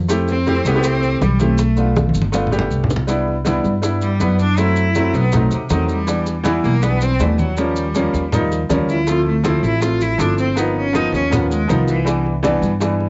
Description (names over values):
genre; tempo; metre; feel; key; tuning
Afro-Cuban jazz; 160 BPM; 4/4; straight; C major from 3.1 s; A4 = 445 Hz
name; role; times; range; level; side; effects
upright bass; bass; 0.0-13.1 s; G1 to G2; -22 LUFS; equal; none
bright cello; melody; 0.1-12.2 s; C3 to F4; -24 LUFS; equal; cassette tape
clear baby grand piano; accompaniment; 0.1-13.1 s; E3 to G4; -22 LUFS; equal; cassette tape
bongos; percussion; 0.1-13.1 s; none; -29 LUFS; equal; none
congas; percussion; 0.1-13.1 s; none; -26 LUFS; equal; none
maracas; percussion; 0.1-13.0 s; none; -36 LUFS; equal; none
room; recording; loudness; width
moderate studio reverb, RT60 0.6 s; home recording on cassette, nothing above 7.7 kHz; -17 LUFS; mono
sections
0.0-3.1 A section; 3.1-13.1 B section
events
drum fill 2.0-3.1; cello solo 3.1-13.1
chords
0.1 Fmaj9; 1.6 Bm7b5; 2.3 G7; 3.1 Cmaj9; 4.6 F#m7b5; 5.3 B7b9; 6.1 Em7; 7.6 Eb9; 9.1 Dm9; 10.6 G7alt; 12.1 Cmaj9